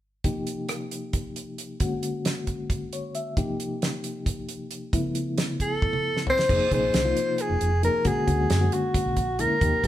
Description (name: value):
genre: electric jazz fusion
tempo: 269 BPM (eighths)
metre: 7/8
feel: straight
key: unclear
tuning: A4 = 440 Hz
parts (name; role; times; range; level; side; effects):
- reed electric piano; accompaniment; 0.2-9.9 s; C3 to E5; -29 LUFS; left 2 dB; fast tremolo
- damped 70s drum kit; drums; 0.2-9.9 s; crash cymbal, hi-hat, kick drum, rim click, snare drum, toms; -28 LUFS; right 1 dB; none
- warm soprano saxophone; melody; 5.6-9.9 s; F#4 to C5; -24 LUFS; equal; none
- fingered electric bass; bass; 6.5-9.9 s; F1 to G2; -26 LUFS; right 1 dB; none
room: moderate stone room reverb, RT60 1.0 s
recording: band playing live in one room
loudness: -23 LUFS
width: side -13 dB against mid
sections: 0.2-6.5 A section; 6.5-9.9 B section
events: reed electric piano fill 2.7-3.4; drum fill 5.8-6.5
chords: 0.2 Fsus2; 1.8 Bb7alt; 3.4 Eb; 4.9 Db7alt; 6.5 Fm7; 8.1 Bb7alt